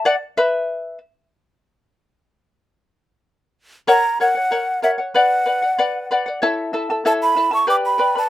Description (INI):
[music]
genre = andean folk, Andean ensemble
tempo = 95 BPM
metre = 2/4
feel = straight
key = unclear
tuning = A4 = 440 Hz
[part]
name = charango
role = accompaniment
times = 0.0-1.0, 3.9-8.3 s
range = E4 to B5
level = -18 LUFS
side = left 2 dB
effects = none
[part]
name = mellow hollow large quena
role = melody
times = 3.9-8.3 s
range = E5 to D6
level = -18 LUFS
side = right 1 dB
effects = none
[sound]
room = light reverb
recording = close, detailed microphones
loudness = -16 LUFS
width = side -14 dB against mid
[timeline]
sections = 0.0-3.9 A section; 3.9-8.3 B section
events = charango solo 0.0-3.9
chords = 0.1 N.C.; 3.9 F#; 5.2 Bm; 6.4 A; 7.7 G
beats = | 0.07 0.70 | 1.34 1.98 | 2.61 3.25 | 3.88 4.52 | 5.15 5.79 | 6.42 7.05 | 7.68